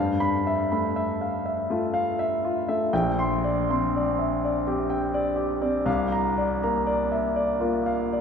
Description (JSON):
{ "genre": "classical, impressionist solo piano", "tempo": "60 BPM", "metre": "3/4", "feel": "rubato", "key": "unclear", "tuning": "A4 = 439 Hz", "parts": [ { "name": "warm concert grand piano", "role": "solo", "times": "0.0-8.2 s", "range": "Bb1 to C6", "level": "-23 LUFS", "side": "equal", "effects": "none" } ], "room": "wet church reverb, RT60 4.0 s", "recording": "recorded in a church or concert hall", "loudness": "-23 LUFS", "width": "side -6 dB against mid", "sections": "0.0-8.2 A section", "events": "none", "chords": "0.0 G13; 2.9 Bb69; 5.9 C9sus4", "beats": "0.94 1.92 | 2.92 3.93 4.88 | 5.87 6.87 7.87" }